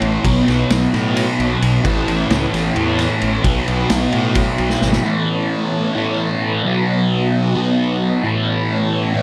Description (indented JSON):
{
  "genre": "psychedelic rock",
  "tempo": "263 BPM (eighths)",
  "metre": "7/8",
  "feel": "straight",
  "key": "A lydian",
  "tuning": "A4 = 439 Hz",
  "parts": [
    { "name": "string machine, cellos", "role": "sustained chords", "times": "0.0-9.2 s", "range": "B3 to A5", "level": "-28 LUFS", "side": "equal", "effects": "ensemble chorus" },
    { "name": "thick fuzz guitar", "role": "riff", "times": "0.0-9.2 s", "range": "A2 to B3", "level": "-19 LUFS", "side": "equal", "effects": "distortion, phaser" },
    { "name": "fuzz fingered electric bass", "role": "bass", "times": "0.0-5.0 s", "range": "G#1 to A2", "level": "-23 LUFS", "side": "equal", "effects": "overdrive" },
    { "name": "vintage drum kit", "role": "drums", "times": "0.0-5.0 s", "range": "crash cymbal, kick drum, ride cymbal, snare drum", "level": "-24 LUFS", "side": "equal", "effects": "none" }
  ],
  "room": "studio ambience",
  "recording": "none",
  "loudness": "-17 LUFS",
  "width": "mono",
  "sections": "0.0-5.0 A section; 5.0-9.2 B section",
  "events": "drum fill 4.7-5.0",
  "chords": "0.2 B7; 1.8 Aadd9; 3.5 B7; 5.0 Aadd9; 6.6 B7; 8.2 Aadd9",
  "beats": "0.02 | 0.25 0.47 0.70 0.93 1.16 1.39 1.62 | 1.85 2.08 2.31 2.54 2.76 2.99 3.22 | 3.45 3.68 3.91 4.13 4.36 4.59 4.82 | 5.05 5.28 5.50 5.73 5.96 6.19 6.42 | 6.64 6.87 7.10 7.33 7.55 7.78 8.01 | 8.24 8.47 8.69 8.92 9.15"
}